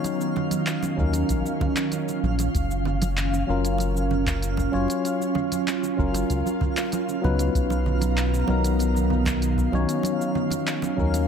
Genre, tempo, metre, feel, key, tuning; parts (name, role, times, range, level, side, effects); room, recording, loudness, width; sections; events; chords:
sunset chillout; 96 BPM; 4/4; straight; F# major; A4 = 440 Hz
tine electric piano; accompaniment; 0.0-11.3 s; F#3 to C#5; -27 LUFS; moving between left 6 dB and right 7 dB; auto-pan, analog delay
ethereal airy pad; sustained chords; 0.0-11.3 s; D#3 to A#5; -28 LUFS; right 2 dB; ensemble chorus, built-in reverb
smooth R&B drum kit; drums; 0.0-11.3 s; cabasa, handclaps, hi-hat; -32 LUFS; equal
congas; percussion; 0.0-11.3 s; -33 LUFS; right 4 dB; analog delay
twinkling granular texture; texture; 0.0-11.3 s; E#4 to E#5; -35 LUFS; left 2 dB; built-in reverb
round analog bass; bass; 1.0-11.3 s; F#1 to D#2; -24 LUFS; equal
electronic kick drum; drums; 1.0-11.1 s; -28 LUFS; equal
light reverb, digital ambience; echo-heavy mix; -22 LUFS; side -7 dB against mid
0.0-11.3 A section
0.0 D#m7; 2.5 F#maj7; 7.5 Bmaj7; 10.0 D#m7